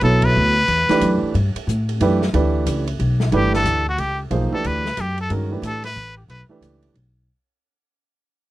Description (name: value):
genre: modal jazz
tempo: 182 BPM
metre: 3/4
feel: swing 63% on 8ths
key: G lydian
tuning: A4 = 439 Hz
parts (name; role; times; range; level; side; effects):
- trumpet with straight mute; melody; 0.0-1.2, 3.4-6.4 s; F#4 to B4; -21 LUFS; left 1 dB; none
- warm grand piano; accompaniment; 0.0-6.9 s; Eb3 to C#5; -21 LUFS; right 3 dB; none
- upright bass; bass; 0.0-7.3 s; G1 to A2; -20 LUFS; left 1 dB; none
- open jazz drum kit; drums; 0.0-7.0 s; hi-hat, kick drum, ride cymbal, snare drum; -31 LUFS; equal; none
room: little or no reverb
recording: dry, close 1970s-style studio recording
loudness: -17 LUFS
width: side -16 dB against mid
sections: 0.0-3.3 A section; 3.3-7.3 B section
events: band accent 0.2; fade-out 3.3-7.3; muted trumpet solo 3.3-7.3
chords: 0.0 Gmaj9